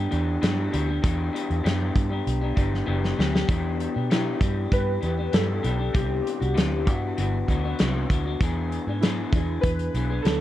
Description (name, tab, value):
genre	indie pop, bedroom pop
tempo	98 BPM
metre	4/4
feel	straight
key	E minor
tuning	A4 = 440 Hz
part	electric guitar through a small old amp	accompaniment	0.0-10.4 s	C3 to G#4	-28 LUFS	left 3 dB	lush chorus, vibrato effect
part	vintage muted fingered electric bass	bass	0.0-10.4 s	F#1 to B2	-26 LUFS	equal	none
part	loose indie drum kit	drums	0.1-10.4 s	hi-hat, kick drum, snare drum	-24 LUFS	equal	none
part	warbly lo-fi synth keys	melody	4.1-10.4 s	E4 to B4	-30 LUFS	equal	wide subtle chorus, analog delay
room	small room ambience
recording	cassette tape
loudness	-22 LUFS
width	side -13 dB against mid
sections	0.0-3.5 A section; 3.5-10.4 B section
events	drum fill 2.9-3.5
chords	0.0 Em7; 6.0 Cmaj9#11; 8.4 E7